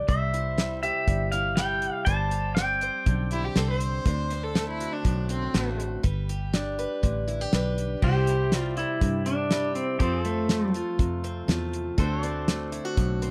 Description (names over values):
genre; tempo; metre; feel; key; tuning
honky-tonk and classic country; 121 BPM; 4/4; straight; C major; A4 = 440 Hz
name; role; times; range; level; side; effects
picked acoustic archtop guitar; accompaniment; 0.0-13.3 s; A2 to C5; -34 LUFS; equal; none
pedal steel guitar; melody; 0.1-3.5, 8.0-10.7 s; A3 to A5; -30 LUFS; equal; none
fingered electric bass; bass; 0.1-13.3 s; G1 to G2; -32 LUFS; equal; none
damped 70s drum kit; drums; 0.1-13.3 s; crash cymbal, hi-hat, kick drum, snare drum; -28 LUFS; equal; none
clear fiddle; second line; 3.3-5.8 s; C4 to C5; -34 LUFS; equal; none
pedal steel guitar; sustained chords; 8.0-13.3 s; G4 to D5; -38 LUFS; equal; none
room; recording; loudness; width
little or no reverb; dark, warm production; -26 LUFS; mono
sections
0.0-8.0 A section; 8.0-13.3 A section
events
none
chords
0.1 C; 2.1 Gsus4; 4.1 D7; 6.0 G; 8.0 C; 10.0 F; 12.0 D7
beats
| 0.09 0.59 1.08 1.58 | 2.08 2.57 3.07 3.56 | 4.06 4.55 5.05 5.55 | 6.04 6.54 7.03 7.53 | 8.02 8.52 9.01 9.51 | 10.00 10.50 10.99 11.49 | 11.98 12.48 12.97